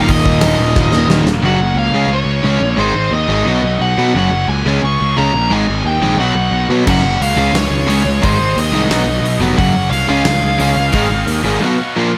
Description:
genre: punk rock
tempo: 177 BPM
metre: 4/4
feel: straight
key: unclear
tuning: A4 = 440 Hz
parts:
  - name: nasal lead guitar with a parked wah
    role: melody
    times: 0.0-11.9 s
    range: C5 to Db6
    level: -20 LUFS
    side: equal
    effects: overdrive
  - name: distorted electric guitar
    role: riff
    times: 0.0-12.1 s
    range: Eb2 to Db4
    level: -22 LUFS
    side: equal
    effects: overdrive
  - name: high-gain distorted guitar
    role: riff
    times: 0.0-12.2 s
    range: Eb2 to Ab4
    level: -23 LUFS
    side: equal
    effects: distortion
  - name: overdriven electric guitar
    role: riff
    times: 0.0-12.1 s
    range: Eb2 to Db4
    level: -20 LUFS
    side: equal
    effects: none
  - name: fuzz picked electric bass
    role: bass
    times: 0.0-11.6 s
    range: Eb1 to B2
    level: -19 LUFS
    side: equal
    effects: overdrive
  - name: big rock drum kit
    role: drums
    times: 0.1-1.3, 6.9-11.4 s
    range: crash cymbal, hi-hat, kick drum, snare drum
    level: -22 LUFS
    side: equal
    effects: none
room: light reverb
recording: none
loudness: -14 LUFS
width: mono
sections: 0.0-1.4 A section; 1.4-12.2 B section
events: drum fill 0.8-1.4; half time 1.4-12.2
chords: 0.0 Eb; 1.4 Gb; 1.9 Db; 2.8 Ab; 3.5 B; 4.2 Gb; 4.7 Db; 5.5 Ab; 6.2 B; 6.9 Gb; 7.4 Db; 8.2 Ab; 8.9 B; 9.6 Gb; 10.1 Db; 10.9 Ab; 11.6 B

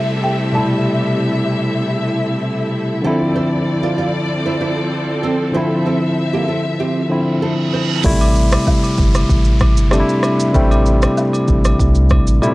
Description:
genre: afrobeats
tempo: 96 BPM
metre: 4/4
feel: straight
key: unclear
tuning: A4 = 440 Hz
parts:
  - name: marimba with medium mallets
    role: melody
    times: 0.0-2.7 s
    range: E5 to A5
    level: -23 LUFS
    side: equal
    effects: none
  - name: barky tine electric piano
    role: accompaniment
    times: 0.0-12.5 s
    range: Bb2 to E4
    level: -17 LUFS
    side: equal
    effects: none
  - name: warm symphonic string section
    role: sustained chords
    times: 0.0-8.0 s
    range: F3 to E5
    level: -22 LUFS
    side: equal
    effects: none
  - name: downlifter and reverse cymbal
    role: sound effects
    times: 0.0-12.5 s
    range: none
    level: -29 LUFS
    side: right 3 dB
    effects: none
  - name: nylon-string guitar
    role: riff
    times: 3.0-7.8 s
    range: Bb3 to D5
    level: -24 LUFS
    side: right 4 dB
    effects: none
  - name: warm sub bass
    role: bass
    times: 8.0-12.4 s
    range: G1 to C2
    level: -15 LUFS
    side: equal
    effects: none
  - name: afro-pop drum kit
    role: drums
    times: 8.0-12.5 s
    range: crash cymbal, kick drum, rim click, shaker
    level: -17 LUFS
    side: equal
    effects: none
  - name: agogo bells and woodblock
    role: percussion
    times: 8.2-12.5 s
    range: none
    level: -27 LUFS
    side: equal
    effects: none
room: small room ambience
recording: dry, gritty hardware recording, cassette tape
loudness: -14 LUFS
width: side -20 dB against mid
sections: 0.0-8.0 A section; 8.0-12.5 B section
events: reverse cymbal 7.3-8.0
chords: 0.0 Am7; 3.0 Dm9; 8.0 Am7

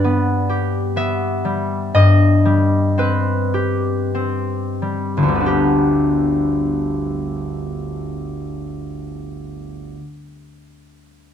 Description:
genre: classical, solo harp piece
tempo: 43-70 BPM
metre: 3/4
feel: rubato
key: G major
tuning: A4 = 438 Hz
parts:
  - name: concert harp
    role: solo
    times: 0.0-10.2 s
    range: G1 to E5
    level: -17 LUFS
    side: left 1 dB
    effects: none
room: little or no reverb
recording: close, detailed microphones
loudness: -16 LUFS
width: side -8 dB against mid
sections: 0.0-5.5 A section; 5.5-9.0 B section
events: slowing down 0.0-5.5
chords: 0.0 G; 1.9 Cm/G; 5.5 G

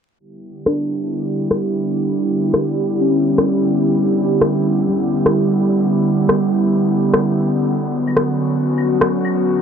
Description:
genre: future garage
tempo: 128 BPM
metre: 4/4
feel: swing 60% on 16ths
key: E dorian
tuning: A4 = 440 Hz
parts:
  - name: airy breathy pad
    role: sustained chords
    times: 0.6-9.6 s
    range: D3 to G4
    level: -17 LUFS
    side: right 1 dB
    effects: chorus, vintage 12-bit sampler grit
  - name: muted felt-like synth keys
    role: accompaniment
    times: 0.7-7.7 s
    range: G3 to D4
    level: -21 LUFS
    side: equal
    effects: chorus, vintage 12-bit sampler grit, low-pass filter, dub echo
  - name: electronic rim click and claves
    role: drums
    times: 0.7-9.3 s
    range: none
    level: -17 LUFS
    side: left 1 dB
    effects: none
room: light reverb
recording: vinyl crackle, low-pass filter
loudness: -15 LUFS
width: side -7 dB against mid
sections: 0.2-9.6 A section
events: filter sweep on synth keys 0.2-9.6; filter sweep 0.2-9.6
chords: 0.2 Em7; 7.7 Bmadd9

